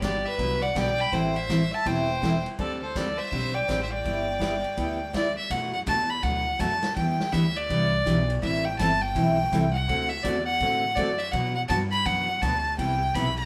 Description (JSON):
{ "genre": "country, western swing", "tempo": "165 BPM", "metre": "4/4", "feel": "swing 63% on 8ths", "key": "unclear", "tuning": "A4 = 439 Hz", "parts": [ { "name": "clear fiddle", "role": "melody", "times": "0.0-13.5 s", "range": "C5 to B5", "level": "-29 LUFS", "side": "equal", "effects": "none" }, { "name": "clear fiddle", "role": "second line", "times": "0.0-5.1 s", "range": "G4 to G5", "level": "-33 LUFS", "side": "equal", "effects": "none" }, { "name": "picked steel-string acoustic guitar", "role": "accompaniment", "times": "0.0-13.3 s", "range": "B2 to A4", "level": "-31 LUFS", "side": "equal", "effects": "none" }, { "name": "upright bass", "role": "bass", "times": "0.0-13.5 s", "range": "E1 to B2", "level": "-34 LUFS", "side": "equal", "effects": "none" }, { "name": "vintage drum kit", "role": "drums", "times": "0.0-13.4 s", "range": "hi-hat, kick drum, ride cymbal, snare drum", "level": "-38 LUFS", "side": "equal", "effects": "none" } ], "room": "wet studio reverb, RT60 0.7 s", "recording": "band playing live in one room", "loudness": "-26 LUFS", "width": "mono", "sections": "0.0-5.5 A section; 5.5-13.5 B section", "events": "none", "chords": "0.0 Gmaj7; 1.1 Am7; 2.6 D7sus4; 4.0 G6; 5.5 Bm7; 7.0 Em7; 8.4 Am7; 9.9 D7; 11.3 Bm; 12.8 Cmaj7" }